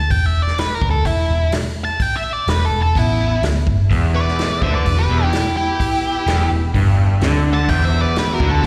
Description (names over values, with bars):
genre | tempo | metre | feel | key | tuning
blues rock power trio and southern rock | 127 BPM | 4/4 | straight | E minor | A4 = 438 Hz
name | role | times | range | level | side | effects
octave-fuzz lead guitar | melody | 0.0-8.6 s | E4 to A5 | -24 LUFS | equal | distortion, slapback echo
vintage muted picked electric bass | bass | 0.0-8.7 s | E1 to D2 | -20 LUFS | equal | none
vintage drum kit | drums | 0.1-8.7 s | hi-hat, kick drum, snare drum | -25 LUFS | equal | none
biting lead guitar | second line | 3.0-8.7 s | B3 to F#5 | -28 LUFS | equal | overdrive, slapback echo
overdriven tonewheel organ | sustained chords | 3.9-8.7 s | B3 to F5 | -34 LUFS | equal | none
crunchy overdriven guitar | riff | 3.9-8.6 s | E2 to D3 | -24 LUFS | equal | slapback echo
room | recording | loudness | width
light reverb, small room reverb | live gig heard through the venue's PA, recital hall reverb | -17 LUFS | mono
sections
0.0-8.7 A section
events
none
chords
0.0 Em